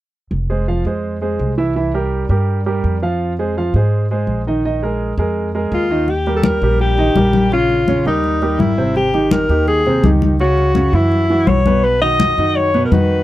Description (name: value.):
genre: Afro-Cuban jazz.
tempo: 167 BPM.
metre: 4/4.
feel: straight.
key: unclear.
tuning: A4 = 440 Hz.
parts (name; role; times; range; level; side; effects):
upright bass; bass; 0.3-13.2 s; F1 to Ab2; -19 LUFS; equal; none.
clear concert grand piano; accompaniment; 0.5-13.2 s; Cb3 to F5; -19 LUFS; right 2 dB; none.
clear alto saxophone; melody; 5.7-13.2 s; Eb4 to D#5; -16 LUFS; left 2 dB; none.
congas; percussion; 6.1-13.1 s; none; -19 LUFS; left 3 dB; none.
room: little or no reverb.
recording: dry, close 1970s-style studio recording.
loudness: -13 LUFS.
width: side -15 dB against mid.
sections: 0.3-6.1 A section; 6.1-13.2 B section.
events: none.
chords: 0.3 Fm; 1.8 C7; 3.2 Fm7; 4.6 Bb7sus4; 6.1 Eb; 7.5 Bbm; 8.2 Eb; 9.0 Abmaj7; 10.4 Dbm; 11.1 Gb5; 11.8 B.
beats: | 0.32 0.68 1.04 1.40 | 1.76 2.12 2.48 2.84 | 3.20 3.56 3.92 4.28 | 4.64 5.00 5.36 5.72 | 6.08 6.44 6.80 7.16 | 7.52 7.88 8.24 8.60 | 8.96 9.32 9.68 10.04 | 10.40 10.76 11.12 11.48 | 11.84 12.20 12.56 12.92.